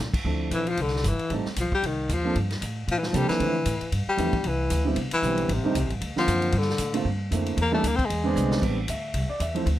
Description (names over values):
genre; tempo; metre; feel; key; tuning
jazz, small-group swing and bop; 230 BPM; 4/4; swing 58% on 8ths; D minor; A4 = 440 Hz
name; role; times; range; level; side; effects
upright bass; bass; 0.0-9.8 s; G1 to D3; -28 LUFS; equal; none
vintage drum kit; drums; 0.1-9.7 s; crash cymbal, hi-hat, kick drum, ride cymbal, snare drum; -32 LUFS; equal; none
dark baby grand piano; accompaniment; 0.2-9.7 s; D3 to F#5; -28 LUFS; right 3 dB; none
warm baritone saxophone; melody; 0.5-8.6 s; C3 to C4; -26 LUFS; left 2 dB; none
room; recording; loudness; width
light reverb; none; -23 LUFS; side -13 dB against mid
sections
0.3-8.6 A section; 8.6-9.8 A section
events
baritone saxophone solo 0.0-8.6; drum fill 8.4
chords
0.3 Dm9; 1.3 Am7b5; 1.8 Cm11; 2.4 Gm11; 3.4 Dm9; 3.9 G13; 4.4 Cmaj9; 5.5 Am7b5; 6.0 D7alt; 6.5 Gm11; 7.6 Em7b5; 8.1 E7b13; 8.6 Am11